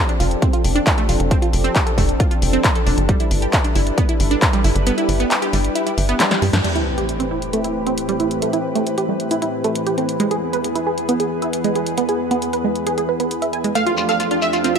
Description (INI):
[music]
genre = uplifting trance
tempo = 135 BPM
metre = 4/4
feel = straight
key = A minor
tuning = A4 = 440 Hz
[part]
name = lush unison pad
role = sustained chords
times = 0.0-14.8 s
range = E2 to B4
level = -23 LUFS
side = left 1 dB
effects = chorus, sidechain pumping
[part]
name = wide unison pluck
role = arpeggios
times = 0.1-14.8 s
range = G3 to G#5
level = -22 LUFS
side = right 3 dB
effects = sidechain pumping, digital delay
[part]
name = punchy analog drum machine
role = drums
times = 0.1-14.8 s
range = crash cymbal, handclaps, hi-hat, snare drum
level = -23 LUFS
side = left 1 dB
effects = none
[part]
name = tight sequencer bass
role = bass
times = 0.2-6.6 s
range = F1 to G2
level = -19 LUFS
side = equal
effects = sidechain pumping
[part]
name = electronic kick drum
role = drums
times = 0.4-4.5 s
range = none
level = -18 LUFS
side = equal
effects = overdrive
[part]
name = sub drop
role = sound effects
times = 6.6-8.4 s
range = none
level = -28 LUFS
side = equal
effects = none
[part]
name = supersaw stab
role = melody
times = 13.8-14.8 s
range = F4 to F5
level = -18 LUFS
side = right 2 dB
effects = sidechain pumping, digital delay
[part]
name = shekere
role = percussion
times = 13.8-14.7 s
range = none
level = -28 LUFS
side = left 6 dB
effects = none
[sound]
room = light reverb, digital ambience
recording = none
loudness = -16 LUFS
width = side -7 dB against mid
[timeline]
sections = 0.0-6.6 A section; 6.6-14.8 B section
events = filter sweep on analog synth pad 0.0-6.6; kick drops out 4.9-6.6; drum fill 6.2-6.6; band accent 6.5; impact 6.6-8.4; filter sweep on synth arpeggio sound 6.6-14.8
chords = 0.0 F6; 3.1 G6; 6.6 Am7; 10.2 E; 13.8 F6